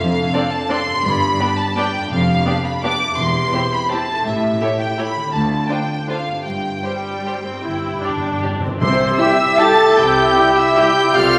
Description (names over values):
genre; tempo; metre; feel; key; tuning
classical; 145-181 BPM; 3/4; rubato; C major; A4 = 440 Hz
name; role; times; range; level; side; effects
warm symphonic violin section; melody; 0.0-11.4 s; E5 to A6; -23 LUFS; equal; none
concert harp; arpeggios; 0.0-11.4 s; E2 to A4; -30 LUFS; equal; none
warm studio cello section; bass; 0.0-11.4 s; D2 to C3; -27 LUFS; equal; none
warm symphonic double bass section; bass; 0.0-11.4 s; E1 to D2; -31 LUFS; equal; none
rich symphonic violin section; second line; 0.3-11.4 s; F4 to A5; -27 LUFS; equal; none
warm symphonic viola section; accompaniment; 0.3-10.8 s; G3 to G4; -28 LUFS; equal; none
timpani; percussion; 1.0-1.5, 7.6-9.4 s; G2 to C3; -28 LUFS; equal; none
small flute group; second line; 8.8-11.4 s; C5 to A5; -23 LUFS; equal; none
warm clarinet; second line; 8.8-11.4 s; G4 to A4; -22 LUFS; equal; none
warm oboe; second line; 8.8-11.4 s; D5 to E5; -24 LUFS; equal; none
mellow French horn section; sustained chords; 8.8-11.4 s; C4 to A4; -21 LUFS; equal; none
warm bassoon; accompaniment; 9.2-11.4 s; E4 to G4; -24 LUFS; equal; none
clear trombone section; sustained chords; 9.2-10.9 s; G3 to E4; -28 LUFS; equal; none
mellow trumpet section; stabs; 9.2-10.9 s; G4; -25 LUFS; equal; none
room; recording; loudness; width
wet scoring stage reverb, RT60 1.7 s; vinyl crackle; -17 LUFS; mono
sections
0.0-8.8 A section; 8.8-11.4 B section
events
timpani fill 7.6-8.8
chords
0.0 Dm7/F; 1.0 G; 2.1 G7/F; 3.2 C/E; 4.2 A7; 5.3 Dm7; 6.5 C/G; 8.8 C